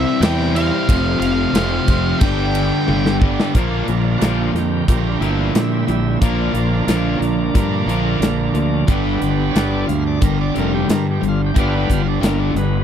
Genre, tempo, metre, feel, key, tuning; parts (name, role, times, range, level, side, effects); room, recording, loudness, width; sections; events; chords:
classic rock; 90 BPM; 4/4; straight; A4 = 438 Hz
octave-fuzz lead guitar; melody; 0.0-3.2 s; E5 to G5; -24 LUFS; right 1 dB; distortion
bright tonewheel organ; sustained chords; 0.0-12.8 s; E3 to F5; -25 LUFS; equal; slow rotary speaker, overdrive
crunchy overdriven guitar; riff; 0.0-12.8 s; F2 to Bb4; -22 LUFS; right 12 dB
distorted electric guitar; riff; 0.0-12.8 s; F2 to C4; -22 LUFS; left 12 dB; distortion
fuzz fingered electric bass; bass; 0.0-12.8 s; F1 to Bb2; -21 LUFS; equal; overdrive
big rock drum kit; drums; 0.2-12.7 s; hi-hat, kick drum, ride cymbal, snare drum, toms; -19 LUFS; equal
little or no reverb; dry, close 1970s-style studio recording; -15 LUFS; side -9 dB against mid
0.0-3.5 A section; 3.5-12.8 B section
drum fill 2.9-3.5; tonewheel organ solo 3.5-12.8
0.0 C; 0.9 F; 2.2 G; 3.5 Bb; 8.9 G